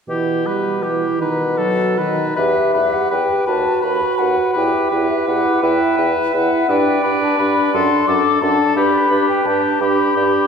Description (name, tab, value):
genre	classical, slow romantic movement for wind quintet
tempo	50-58 BPM (dotted quarters)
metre	6/8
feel	rubato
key	E minor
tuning	A4 = 440 Hz
part	clear oboe	second line	0.1-10.5 s	G4 to B4	-21 LUFS	left 3 dB	none
part	clear clarinet	accompaniment	0.1-10.5 s	D#4 to E5	-22 LUFS	right 7 dB	none
part	mellow French horn	accompaniment	0.1-10.5 s	D#3 to G4	-21 LUFS	right 1 dB	none
part	mellow bassoon	bass	0.1-10.3 s	D#2 to B2	-22 LUFS	right 1 dB	none
part	mellow hollow silver concert flute	melody	2.0-10.5 s	D#5 to D6	-20 LUFS	left 4 dB	none
room	wet concert hall reverb, RT60 2.3 s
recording	heard from further back in the room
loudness	-14 LUFS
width	side -6 dB against mid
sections	0.1-2.4 A section; 2.4-10.5 B section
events	none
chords	0.1 Em/B; 1.2 B7; 2.4 Em; 3.5 B/D#; 4.5 Em; 6.7 G; 7.7 D/F#; 8.8 G